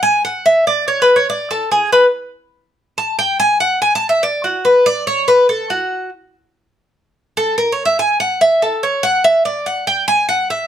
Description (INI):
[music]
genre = latin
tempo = 144 BPM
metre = 4/4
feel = straight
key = unclear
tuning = A4 = 441 Hz
[part]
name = Cuban tres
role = solo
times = 0.0-10.7 s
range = F#4 to A5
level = -12 LUFS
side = equal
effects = none
[sound]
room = moderate studio reverb, RT60 0.6 s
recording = none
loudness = -13 LUFS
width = side -10 dB against mid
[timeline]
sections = 0.0-10.7 A section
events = Cuban tres solo 0.0-10.7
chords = none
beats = | 0.04 0.46 0.88 1.30 | 1.72 2.14 2.56 2.98 | 3.40 3.82 4.24 4.66 | 5.07 5.49 5.91 6.33 | 6.74 7.16 7.58 8.00 | 8.41 8.83 9.25 9.67 | 10.09 10.50